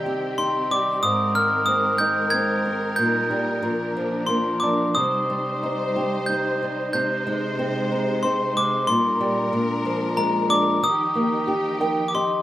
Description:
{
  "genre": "children's music, lullaby",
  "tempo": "92 BPM",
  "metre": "3/4",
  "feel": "straight",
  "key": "Eb major",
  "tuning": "A4 = 440 Hz",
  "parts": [
    { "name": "flamenco guitar", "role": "accompaniment", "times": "0.0-12.4 s", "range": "Ab2 to G5", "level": "-25 LUFS", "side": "equal", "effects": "none" },
    { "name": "rich symphonic string section", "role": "sustained chords", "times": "0.0-12.4 s", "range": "Bb2 to C5", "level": "-27 LUFS", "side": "equal", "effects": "none" },
    { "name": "glockenspiel with brass mallets", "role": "melody", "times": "0.4-12.4 s", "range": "Bb5 to Ab6", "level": "-23 LUFS", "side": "equal", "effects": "none" }
  ],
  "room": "light reverb, small room ambience",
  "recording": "rough home demo mix",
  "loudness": "-20 LUFS",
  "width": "side -14 dB against mid",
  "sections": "0.0-12.4 A section",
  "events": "nylon-string guitar fill 11.5-12.4",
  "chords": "0.0 Cm; 1.0 Abadd9; 3.0 Eb/Bb; 3.6 Bb; 5.0 Cm; 6.9 Ab/C; 8.9 Eb/Bb; 9.5 Bb7; 10.8 Ebadd9"
}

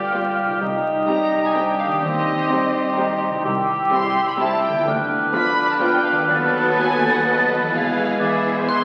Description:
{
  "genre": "cinematic, playful, whimsical film cue",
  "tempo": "126 BPM",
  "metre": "3/4",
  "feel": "straight",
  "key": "C minor",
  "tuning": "A4 = 440 Hz",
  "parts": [
    { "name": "rich chamber violin section", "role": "melody", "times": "0.0-8.8 s", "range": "B4 to C6", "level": "-28 LUFS", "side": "equal", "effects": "none" },
    { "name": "bright large flute ensemble", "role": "second line", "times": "0.0-8.8 s", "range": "C6 to A6", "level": "-28 LUFS", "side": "equal", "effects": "none" },
    { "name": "clear oboe", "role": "second line", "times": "0.0-8.8 s", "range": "G4 to D5", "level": "-26 LUFS", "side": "equal", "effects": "none" },
    { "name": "rich symphonic violin section", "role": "second line", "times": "0.0-8.8 s", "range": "Eb4 to C6", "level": "-30 LUFS", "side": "equal", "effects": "none" },
    { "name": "mellow bassoon", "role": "accompaniment", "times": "0.0-8.8 s", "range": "G#3 to G4", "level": "-26 LUFS", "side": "equal", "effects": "none" },
    { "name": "rich chamber viola section", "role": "accompaniment", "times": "0.0-8.8 s", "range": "E3 to C4", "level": "-30 LUFS", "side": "equal", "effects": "none" },
    { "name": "mellow French horn section", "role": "sustained chords", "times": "0.0-8.8 s", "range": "G3 to A4", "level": "-32 LUFS", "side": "equal", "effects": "none" },
    { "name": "concert harp", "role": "arpeggios", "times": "0.0-8.8 s", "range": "C3 to C5", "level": "-34 LUFS", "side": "equal", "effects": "none" },
    { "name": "rich chamber double bass section", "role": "bass", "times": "0.6-8.8 s", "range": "E1 to Eb2", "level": "-36 LUFS", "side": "equal", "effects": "none" },
    { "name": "warm studio cello section", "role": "bass", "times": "0.6-8.8 s", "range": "C2 to E2", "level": "-35 LUFS", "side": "equal", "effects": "none" },
    { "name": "xylophone with wooden mallets", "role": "melody", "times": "8.7-8.8 s", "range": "C6", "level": "-23 LUFS", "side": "equal", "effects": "none" }
  ],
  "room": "wet concert hall reverb, RT60 1.8 s",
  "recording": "very old 78 rpm record, vinyl crackle",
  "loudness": "-19 LUFS",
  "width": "mono",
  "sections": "0.0-8.8 A section",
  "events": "none",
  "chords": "0.0 G7/D; 0.6 Cm; 2.0 Cm/Eb; 3.5 C; 4.9 Bdim/D; 6.3 B7/D#; 7.7 E"
}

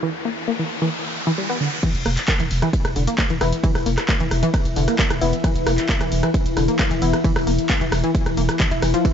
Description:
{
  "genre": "driving peak-time techno",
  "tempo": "133 BPM",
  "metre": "4/4",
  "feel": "straight",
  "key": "unclear",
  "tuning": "A4 = 440 Hz",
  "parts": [
    { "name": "tight sequenced synth", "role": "riff", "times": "0.0-9.1 s", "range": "D3 to E4", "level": "-24 LUFS", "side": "equal", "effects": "chorus, sidechain pumping, ping-pong delay" },
    { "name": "deep dark ambient pad", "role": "drone", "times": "0.0-9.1 s", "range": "E3 to E4", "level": "-26 LUFS", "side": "left 4 dB", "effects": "chorus, built-in reverb, sidechain pumping" },
    { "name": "riser", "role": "sound effects", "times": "0.0-1.8 s", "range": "none", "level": "-29 LUFS", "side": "equal", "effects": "none" },
    { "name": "electronic kick drum", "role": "drums", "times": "1.8-9.1 s", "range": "none", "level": "-22 LUFS", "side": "equal", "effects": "overdrive" },
    { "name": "punchy analog drum machine", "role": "drums", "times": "1.8-9.1 s", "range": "crash cymbal, handclaps, hi-hat, ride cymbal, rim click", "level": "-25 LUFS", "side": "equal", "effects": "sidechain pumping on hats, sidechain pumping on cymbals" },
    { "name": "growling 808-style bass", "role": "bass", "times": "1.9-8.9 s", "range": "E1", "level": "-24 LUFS", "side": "equal", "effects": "tube saturation, sidechain pumping, low-pass filter" },
    { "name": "wavetable chord stab", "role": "stabs", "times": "3.4-7.2 s", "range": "E3 to E4", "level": "-28 LUFS", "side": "left 4 dB", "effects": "sidechain pumping, ping-pong delay" }
  ],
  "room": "light reverb, digital ambience",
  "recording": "nothing above 7.7 kHz",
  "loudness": "-18 LUFS",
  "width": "side -8 dB against mid",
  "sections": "0.0-1.8 A section; 1.8-9.1 B section",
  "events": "riser 0.0-1.8; filter sweep on synth arpeggio sound 0.0-1.8; break 0.0-1.8; drop 1.8-9.1",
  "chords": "0.0 E5"
}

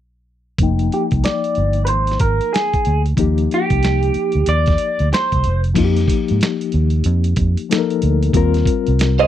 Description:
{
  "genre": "R&B, neo-soul",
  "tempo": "93 BPM",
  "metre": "4/4",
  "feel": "swing 62% on 16ths",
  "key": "F dorian",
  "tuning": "A4 = 440 Hz",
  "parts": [
    { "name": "bright reed electric piano", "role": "accompaniment", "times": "0.6-9.3 s", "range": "F3 to G5", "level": "-21 LUFS", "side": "left 9 dB", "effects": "fast tremolo, low-pass filter" },
    { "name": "vintage muted fingered electric bass", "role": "bass", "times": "0.6-9.3 s", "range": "F1 to Ab2", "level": "-16 LUFS", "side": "right 1 dB", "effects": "none" },
    { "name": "dusty soul sampler-style drum kit", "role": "drums", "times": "0.6-9.3 s", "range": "crash cymbal, hi-hat, kick drum, snare drum", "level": "-20 LUFS", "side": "right 1 dB", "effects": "none" },
    { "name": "electric guitar through a small old amp", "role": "melody", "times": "0.9-5.6 s", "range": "G4 to D5", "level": "-19 LUFS", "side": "right 2 dB", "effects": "low-pass filter, slapback echo" },
    { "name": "electric guitar through a small old amp", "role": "second line", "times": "9.2-9.3 s", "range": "C5 to Eb5", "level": "-12 LUFS", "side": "right 7 dB", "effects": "wide subtle chorus" }
  ],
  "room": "little or no reverb",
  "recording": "dry, close 1970s-style studio recording, faint mains hum",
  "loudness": "-15 LUFS",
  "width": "side -11 dB against mid",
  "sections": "0.6-5.8 A section; 5.8-9.3 B section",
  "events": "filter sweep 0.6-5.8",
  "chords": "0.6 Fm9; 3.2 Ebmaj7; 5.4 F5; 5.8 F7sus2; 8.3 Eb"
}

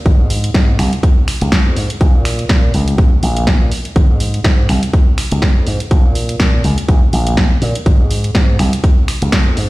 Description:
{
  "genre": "filtered disco house",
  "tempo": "123 BPM",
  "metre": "4/4",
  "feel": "swing 56% on 16ths",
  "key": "unclear",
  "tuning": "A4 = 440 Hz",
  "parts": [
    { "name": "slap bass with an envelope filter", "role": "bass", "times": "0.1-9.7 s", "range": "Ab1 to Bb2", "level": "-16 LUFS", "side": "equal", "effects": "sidechain pumping, low-pass filter" },
    { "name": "electronic kick drum", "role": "drums", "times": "0.1-9.4 s", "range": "none", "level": "-12 LUFS", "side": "equal", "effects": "overdrive" },
    { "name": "punchy analog drum machine", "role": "drums", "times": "0.1-9.7 s", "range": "finger snaps, hi-hat, snare drum", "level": "-20 LUFS", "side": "equal", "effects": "sidechain pumping on hats" }
  ],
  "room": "little or no reverb",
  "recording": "played on a big sound system in a bare room, large studio reverb",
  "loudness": "-11 LUFS",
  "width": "side -19 dB against mid",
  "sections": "0.0-9.7 A section",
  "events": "none",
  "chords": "none"
}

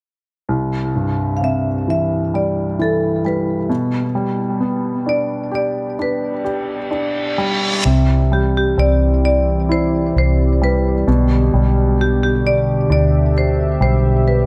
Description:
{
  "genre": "pop",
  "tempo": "66 BPM",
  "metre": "4/4",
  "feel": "straight",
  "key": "C major",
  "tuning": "A4 = 440 Hz",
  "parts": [
    { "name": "clear grand piano", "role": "accompaniment", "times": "0.5-14.5 s", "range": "C2 to G4", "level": "-22 LUFS", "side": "equal", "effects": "tape echo" },
    { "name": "marimba with hard mallets", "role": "melody", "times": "1.4-14.5 s", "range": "G4 to F5", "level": "-24 LUFS", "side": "equal", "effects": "tape echo" },
    { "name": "reverse cymbal", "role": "sound effects", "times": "6.6-7.8 s", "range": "none", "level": "-26 LUFS", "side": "equal", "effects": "none" },
    { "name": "warm analog pad", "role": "sustained chords", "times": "7.8-14.5 s", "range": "B2 to E5", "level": "-23 LUFS", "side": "equal", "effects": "chorus" },
    { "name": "vintage muted fingered electric bass", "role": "bass", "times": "7.9-14.5 s", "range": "B1 to D2", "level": "-18 LUFS", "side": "equal", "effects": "none" }
  ],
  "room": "light reverb",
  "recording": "echo-heavy mix",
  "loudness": "-17 LUFS",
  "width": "mono",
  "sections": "0.5-7.8 A section; 7.8-14.5 B section",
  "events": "reverse cymbal 6.6-7.8",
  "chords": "0.5 C; 3.7 G/B; 7.8 Cadd9; 11.1 G/B"
}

